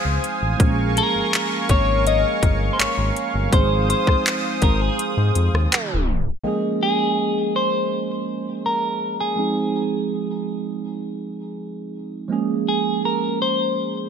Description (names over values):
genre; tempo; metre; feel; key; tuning
contemporary R&B; 82 BPM; 4/4; straight; Bb minor; A4 = 440 Hz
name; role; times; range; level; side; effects
mellow tine electric piano; accompaniment; 0.0-14.1 s; F3 to G5; -25 LUFS; right 5 dB; analog chorus
warm analog pad; sustained chords; 0.0-6.4 s; Bb4 to Eb6; -26 LUFS; right 2 dB; chorus, tremolo
smooth synth bass; bass; 0.1-6.4 s; G1 to Ab2; -21 LUFS; left 1 dB; none
trap drum kit; drums; 0.2-6.3 s; handclaps, hi-hat, kick drum, rim click; -20 LUFS; left 1 dB; none
clean electric guitar; melody; 1.0-14.1 s; Ab4 to Eb5; -23 LUFS; left 2 dB; phaser, ping-pong delay
room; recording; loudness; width
moderate lush hall reverb, RT60 1.9 s, digital ambience; bright 1980s-style digital production, tape stop; -18 LUFS; side -7 dB against mid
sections
0.0-6.5 A section; 6.5-14.1 A section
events
tape stop 5.7-6.5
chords
0.0 Ab6; 0.6 Bbm7; 3.5 Ab6; 6.5 Bbm7; 9.4 Ab6; 12.3 Bbm7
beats
| 0.60 1.33 2.06 2.79 | 3.52 4.25 4.99 5.72 | 6.45 7.18 7.91 8.64 | 9.38 10.11 10.84 11.57 | 12.30 13.04 13.77